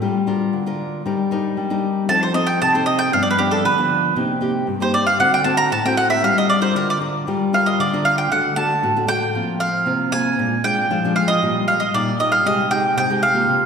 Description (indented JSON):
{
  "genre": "samba",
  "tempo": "116 BPM",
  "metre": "4/4",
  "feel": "straight",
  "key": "G minor",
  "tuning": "A4 = 441 Hz",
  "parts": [
    { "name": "nylon-string guitar", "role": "accompaniment", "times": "0.0-13.7 s", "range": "G2 to Bb4", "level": "-20 LUFS", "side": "left 2 dB", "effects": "none" },
    { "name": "mandolin", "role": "melody", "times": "2.1-13.7 s", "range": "G4 to Bb5", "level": "-18 LUFS", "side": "right 2 dB", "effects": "none" }
  ],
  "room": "wet concert hall reverb, RT60 2.0 s",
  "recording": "recorded in a church or concert hall",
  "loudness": "-16 LUFS",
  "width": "side -6 dB against mid",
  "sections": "0.0-8.3 A section; 8.3-13.7 B section",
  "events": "mandolin solo 0.0-8.3",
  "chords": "0.0 Gm7; 1.1 Ebmaj7/G; 2.1 F7; 3.1 G7; 4.2 Cm7; 5.2 D7; 6.2 Gm7; 8.3 D; 9.3 Fsus4; 10.4 Bb7; 11.4 Ebadd9/Bb; 12.5 Abmaj7/C",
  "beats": "| 0.02 0.54 1.06 1.57 | 2.09 2.61 3.13 3.65 | 4.17 4.69 5.21 5.72 | 6.24 6.76 7.28 7.79 | 8.31 8.83 9.35 9.87 | 10.38 10.90 11.42 11.94 | 12.46 12.97 13.49"
}